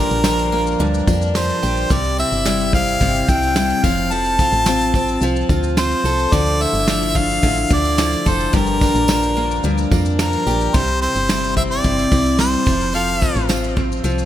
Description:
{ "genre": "acoustic pop", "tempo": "109 BPM", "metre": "4/4", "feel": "straight", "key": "unclear", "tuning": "A4 = 440 Hz", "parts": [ { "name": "clear harmonica", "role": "melody", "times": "0.0-13.5 s", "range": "Bb4 to A5", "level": "-20 LUFS", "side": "left 1 dB", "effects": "ping-pong delay" }, { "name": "picked steel-string acoustic guitar", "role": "accompaniment", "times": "0.0-14.3 s", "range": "G2 to A4", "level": "-21 LUFS", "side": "left 2 dB", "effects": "lush chorus" }, { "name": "direct-recorded clean electric guitar", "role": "arpeggios", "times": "0.0-14.3 s", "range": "F3 to A4", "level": "-28 LUFS", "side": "right 7 dB", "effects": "lush chorus" }, { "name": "solid FM bass", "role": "bass", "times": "0.0-14.3 s", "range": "F1 to F2", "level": "-22 LUFS", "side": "equal", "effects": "none" }, { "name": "soft brush drum kit", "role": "drums", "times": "0.1-14.3 s", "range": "crash cymbal, kick drum, shaker, snare drum", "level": "-21 LUFS", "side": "equal", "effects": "none" }, { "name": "tambourine", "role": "percussion", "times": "0.2-14.2 s", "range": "none", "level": "-34 LUFS", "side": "right 8 dB", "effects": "none" } ], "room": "light reverb, studio reverb", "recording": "bright 1980s-style digital production", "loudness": "-15 LUFS", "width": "side -12 dB against mid", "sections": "0.0-14.3 A section", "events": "none", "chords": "0.0 Gm7; 1.9 C; 3.8 F; 6.3 Dmadd9; 8.5 Gm7; 10.7 C; 12.7 F", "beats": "0.24 0.80 1.35 | 1.90 2.46 3.01 3.56 | 4.12 4.67 5.22 5.77 | 6.33 6.88 7.43 7.98 | 8.53 9.09 9.64 10.19 | 10.74 11.29 11.84 12.39 | 12.95 13.50 14.05" }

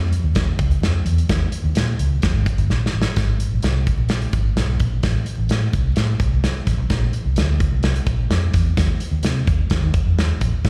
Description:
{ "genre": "uptempo 1960s-style soul", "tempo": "128 BPM", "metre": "4/4", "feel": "straight", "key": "Ab major", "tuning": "A4 = 440 Hz", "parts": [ { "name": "vintage muted fingered electric bass", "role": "bass", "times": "0.0-10.7 s", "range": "G1 to Eb3", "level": "-21 LUFS", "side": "equal", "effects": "none" }, { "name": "natural country drum kit", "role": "drums", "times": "0.1-10.7 s", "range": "hi-hat, kick drum, snare drum", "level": "-24 LUFS", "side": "equal", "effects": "none" } ], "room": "little or no reverb", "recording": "live gig heard through the venue's PA, recital hall reverb, vinyl crackle", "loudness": "-20 LUFS", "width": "mono", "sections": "0.0-3.2 A section; 3.2-10.7 B section", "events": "drum fill 2.7-3.2", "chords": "none", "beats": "0.36 0.83 | 1.30 1.76 2.23 2.70 | 3.16 3.63 4.10 4.57 | 5.03 5.50 5.97 6.44 | 6.90 7.37 7.84 8.31 | 8.78 9.24 9.71 10.18 | 10.65" }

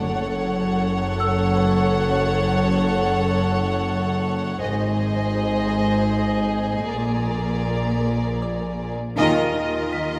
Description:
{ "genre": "cinematic", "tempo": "79 BPM", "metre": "3/4", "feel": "straight", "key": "unclear", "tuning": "A4 = 440 Hz", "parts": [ { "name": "music box", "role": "texture", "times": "0.0-3.8, 8.4-10.2 s", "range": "Ab4 to Cb7", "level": "-34 LUFS", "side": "equal", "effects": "none" }, { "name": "rich studio violin section", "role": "melody", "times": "0.1-10.2 s", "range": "D5 to F#5", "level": "-31 LUFS", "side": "equal", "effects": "none" }, { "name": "rich chamber violin section", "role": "second line", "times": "0.1-10.2 s", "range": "G#4 to C#5", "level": "-28 LUFS", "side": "equal", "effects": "none" }, { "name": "clear chamber double bass section", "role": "bass", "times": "0.1-10.2 s", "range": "F#1 to Eb2", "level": "-29 LUFS", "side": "equal", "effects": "none" }, { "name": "rich chamber cello section", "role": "bass", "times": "0.1-10.2 s", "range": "F#2 to Eb3", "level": "-26 LUFS", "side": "equal", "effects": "none" }, { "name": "rich studio viola section", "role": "accompaniment", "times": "9.2-10.2 s", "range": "F4", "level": "-29 LUFS", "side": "equal", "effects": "none" }, { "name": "warm symphonic cello section", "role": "riff", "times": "9.2-10.2 s", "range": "Eb3 to Eb4", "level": "-29 LUFS", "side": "equal", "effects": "none" } ], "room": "wet scoring stage reverb, RT60 2.1 s", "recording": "none", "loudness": "-22 LUFS", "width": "mono", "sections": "0.0-9.2 A section; 9.2-10.2 B section", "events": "band accent 9.2-9.9", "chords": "0.1 F#m; 4.6 G#; 6.9 Bb7; 9.2 Ebsus2", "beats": "| 0.06 0.82 1.58 | 2.34 3.10 3.86 | 4.62 5.38 6.13 | 6.89 7.65 8.41 | 9.17 9.93" }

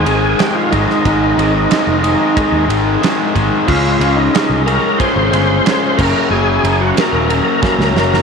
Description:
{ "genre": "classic rock", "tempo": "91 BPM", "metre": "4/4", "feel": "straight", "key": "unclear", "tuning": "A4 = 440 Hz", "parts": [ { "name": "overdriven tonewheel organ", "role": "melody", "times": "0.0-8.2 s", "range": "Eb4 to C5", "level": "-17 LUFS", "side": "right 1 dB", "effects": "slow rotary speaker, chorus vibrato" }, { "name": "mellow tonewheel organ", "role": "sustained chords", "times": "0.0-8.2 s", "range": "Ab3 to F5", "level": "-25 LUFS", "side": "right 1 dB", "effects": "none" }, { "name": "cranked stack guitar", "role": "riff", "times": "0.0-8.2 s", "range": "Gb2 to Db4", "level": "-20 LUFS", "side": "right 12 dB", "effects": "overdrive" }, { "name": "crunchy overdriven guitar", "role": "riff", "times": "0.0-8.2 s", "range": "Gb2 to Db4", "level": "-17 LUFS", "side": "left 12 dB", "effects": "none" }, { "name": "picked electric bass", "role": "bass", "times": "0.0-8.2 s", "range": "Eb1 to Eb2", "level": "-17 LUFS", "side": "equal", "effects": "none" }, { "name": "big rock drum kit", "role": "drums", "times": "0.1-8.2 s", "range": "crash cymbal, kick drum, ride cymbal, snare drum", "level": "-19 LUFS", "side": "right 5 dB", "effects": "none" } ], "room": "moderate echo chamber reverb, RT60 2.1 s", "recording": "1960s-style stereo with parts hard left and right", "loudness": "-11 LUFS", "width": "side -5 dB against mid", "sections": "0.0-8.2 A section", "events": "drum fill 7.6-8.2", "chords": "0.0 Ab; 3.7 Db; 6.0 Gb", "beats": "0.39 | 1.05 1.71 2.37 3.02 | 3.68 4.34 5.00 5.66 | 6.31 6.97 7.63" }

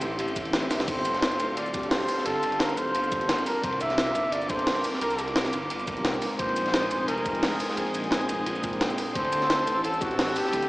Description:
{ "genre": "liquid drum and bass", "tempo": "174 BPM", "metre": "4/4", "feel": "swing 54% on 16ths", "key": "G dorian", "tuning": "A4 = 439 Hz", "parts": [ { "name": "mellow tine electric piano", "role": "accompaniment", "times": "0.0-10.7 s", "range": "G3 to B4", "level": "-32 LUFS", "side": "equal", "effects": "medium stereo tremolo, digital delay" }, { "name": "airy breathy pad", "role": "sustained chords", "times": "0.0-10.7 s", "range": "F4 to E6", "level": "-34 LUFS", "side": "equal", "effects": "chorus, sidechain pumping" }, { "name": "swelling detuned saw bass", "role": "bass", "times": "0.0-10.7 s", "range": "D1 to D2", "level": "-36 LUFS", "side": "equal", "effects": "tube saturation" }, { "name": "crunchy breakbeat drum kit", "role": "drums", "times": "0.0-10.7 s", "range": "hi-hat, ride cymbal, snare drum", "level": "-33 LUFS", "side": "equal", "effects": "high-pass filter on cymbals, high-pass filter on hats, high-pass filter on snare, high-pass filter on room" }, { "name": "jungle sampler-style drum kit", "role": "drums", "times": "0.0-10.7 s", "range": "crash cymbal, hi-hat, shaker, snare drum", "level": "-30 LUFS", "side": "equal", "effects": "none" }, { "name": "electronic kick drum", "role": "drums", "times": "0.4-10.1 s", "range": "none", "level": "-38 LUFS", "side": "equal", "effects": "none" }, { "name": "warm flugelhorn", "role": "melody", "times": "0.9-10.7 s", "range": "F#4 to E5", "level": "-28 LUFS", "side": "equal", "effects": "dub echo" } ], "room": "moderate digital room reverb, RT60 1.2 s, small room ambience", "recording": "played on a big sound system in a bare room, large studio reverb, small speaker sound", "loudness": "-24 LUFS", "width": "side -19 dB against mid", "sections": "0.0-10.7 A section", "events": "drum fill 0.7", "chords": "0.0 D9sus4; 0.9 G9sus4; 3.5 C9sus4; 6.2 Bb9sus4; 9.0 D9sus4", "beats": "0.19 0.53 | 0.88 1.22 1.57 1.91 | 2.26 2.60 2.95 3.29 | 3.64 3.98 4.33 4.67 | 5.02 5.36 5.71 6.05 | 6.39 6.74 7.08 7.43 | 7.77 8.12 8.46 8.81 | 9.15 9.50 9.84 10.19 | 10.53" }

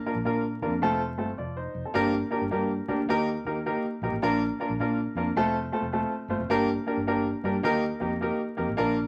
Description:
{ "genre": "uptempo 1960s-style soul", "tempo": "106 BPM", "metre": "4/4", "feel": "swing 64% on 8ths", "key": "unclear", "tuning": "A4 = 435 Hz", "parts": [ { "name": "clear grand piano", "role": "accompaniment", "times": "0.1-9.0 s", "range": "A3 to D5", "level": "-28 LUFS", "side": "equal", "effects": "none" }, { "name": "fingered electric bass", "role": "bass", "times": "0.1-9.1 s", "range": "F1 to Bb2", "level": "-37 LUFS", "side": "equal", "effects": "none" } ], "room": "wet studio reverb, RT60 0.8 s", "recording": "vinyl crackle", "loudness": "-28 LUFS", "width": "mono", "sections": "0.0-9.1 A section", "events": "none", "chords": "0.0 Bb; 0.8 F; 2.0 Gm; 3.1 Eb; 4.2 Bb; 5.4 F; 6.5 Gm; 7.6 Eb", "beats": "0.25 0.82 1.39 | 1.96 2.52 3.09 3.66 | 4.23 4.80 5.37 5.93 | 6.50 7.07 7.64 8.21 | 8.78" }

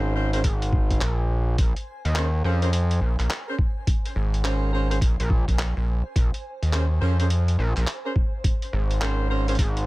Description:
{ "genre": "glitch hop", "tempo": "105 BPM", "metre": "4/4", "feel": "swing 63% on 16ths", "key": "Bb minor", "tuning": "A4 = 440 Hz", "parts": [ { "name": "clear horn section", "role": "stabs", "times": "0.0-9.6 s", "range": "Db4 to C5", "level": "-31 LUFS", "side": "right 1 dB", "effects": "vintage 12-bit sampler grit, sidechain pumping, dub echo" }, { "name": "gritty driven synth bass", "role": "bass", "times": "0.0-9.9 s", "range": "Ab1 to F2", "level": "-22 LUFS", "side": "equal", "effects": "tube saturation" }, { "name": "granular cloud pad", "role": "texture", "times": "1.2-9.9 s", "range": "C5 to Ab5", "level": "-41 LUFS", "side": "left 1 dB", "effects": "built-in reverb, sidechain pumping" }, { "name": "boom bap sampler-style drum kit", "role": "drums", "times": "0.3-9.9 s", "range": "handclaps, hi-hat", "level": "-32 LUFS", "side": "equal", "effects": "none" }, { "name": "electronic kick drum", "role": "drums", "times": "0.4-9.7 s", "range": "none", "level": "-22 LUFS", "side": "equal", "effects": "none" } ], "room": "little or no reverb", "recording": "none", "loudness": "-21 LUFS", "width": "side -20 dB against mid", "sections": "0.0-9.9 A section", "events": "fade-in on ambient pad 0.0-9.9", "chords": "0.0 Bbm9", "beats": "0.45 1.02 | 1.59 2.16 2.73 3.30 | 3.87 4.45 5.02 5.59 | 6.16 6.73 7.30 7.87 | 8.45 9.02 9.59" }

